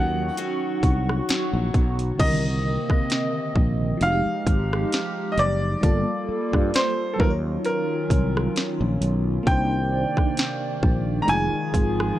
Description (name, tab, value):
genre	contemporary R&B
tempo	66 BPM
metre	4/4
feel	swing 54% on 16ths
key	unclear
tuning	A4 = 441 Hz
part	bright baby grand piano	melody	0.0-12.2 s	A4 to Bb5	-27 LUFS	equal	tape echo
part	FM electric piano with tremolo	accompaniment	0.0-12.2 s	D3 to Db5	-29 LUFS	right 2 dB	phaser
part	hollow soft pad	sustained chords	0.0-12.2 s	C3 to Db6	-30 LUFS	left 1 dB	chorus
part	picked steel-string acoustic guitar	arpeggios	0.0-2.8 s	Eb3 to F4	-33 LUFS	left 7 dB	tape echo
part	sustaining fretless electric bass	bass	0.0-12.1 s	F1 to G2	-24 LUFS	equal	none
part	trap drum kit	drums	0.4-12.2 s	crash cymbal, hi-hat, kick drum, rim click, snare drum	-23 LUFS	equal	vintage 12-bit sampler grit
room	little or no reverb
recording	none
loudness	-20 LUFS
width	side -14 dB against mid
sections	0.0-2.2 A section; 2.2-12.2 A section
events	none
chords	0.0 Ebm7; 2.2 Cm9; 4.0 Fm9; 5.8 Gm9; 7.2 Ebm9; 9.5 Cm9; 11.3 Fm7